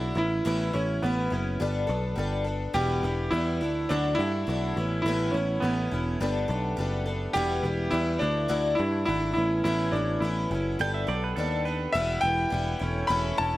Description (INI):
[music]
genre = folk rock and heartland rock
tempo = 104 BPM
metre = 4/4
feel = straight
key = unclear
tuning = A4 = 443 Hz
[part]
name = bright baby grand piano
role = melody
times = 0.0-13.6 s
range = B3 to B5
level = -28 LUFS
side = equal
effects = none
[part]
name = picked twelve-string acoustic guitar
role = accompaniment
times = 0.0-13.6 s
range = E2 to A4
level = -31 LUFS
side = left 2 dB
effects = none
[part]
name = picked electric bass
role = bass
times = 0.0-13.6 s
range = E1 to G2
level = -29 LUFS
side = equal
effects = none
[part]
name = pedal harmonium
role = sustained chords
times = 2.7-13.6 s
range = G3 to C#5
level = -39 LUFS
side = right 3 dB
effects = none
[part]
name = pedal steel guitar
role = second line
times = 10.8-11.9 s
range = A4 to G5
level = -31 LUFS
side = right 6 dB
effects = none
[sound]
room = light reverb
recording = none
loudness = -25 LUFS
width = side -16 dB against mid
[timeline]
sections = 0.0-11.9 A section; 11.9-13.6 B section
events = none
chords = 0.2 Aadd9; 1.6 Gadd9; 2.8 Em; 3.6 Dadd9; 4.8 Aadd9; 6.2 Gadd9; 7.4 Em; 8.2 Dadd9; 9.4 Aadd9; 10.8 Gadd9; 11.9 Em; 12.8 A/E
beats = | 0.46 1.03 1.60 2.18 | 2.75 3.33 3.90 4.48 | 5.05 5.63 6.20 6.78 | 7.35 7.93 8.50 9.08 | 9.65 10.23 10.80 11.38 | 11.95 12.52 13.10